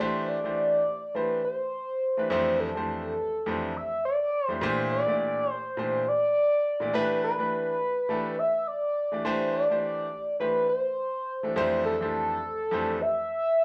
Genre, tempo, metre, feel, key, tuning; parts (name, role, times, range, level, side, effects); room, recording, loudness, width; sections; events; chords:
jazz; 104 BPM; 4/4; swing 55% on 16ths; C major; A4 = 439 Hz
overdriven synth lead; melody; 0.0-13.6 s; A4 to E5; -29 LUFS; equal; chorus
bright concert grand piano; accompaniment; 0.0-13.1 s; F2 to D5; -33 LUFS; equal
moderate large studio reverb, RT60 0.8 s; band playing live in one room; -28 LUFS; mono
0.0-13.6 A section
0.0 Cadd9; 2.3 F6; 4.6 Bb69; 6.9 G69; 9.3 Cadd9; 11.6 F6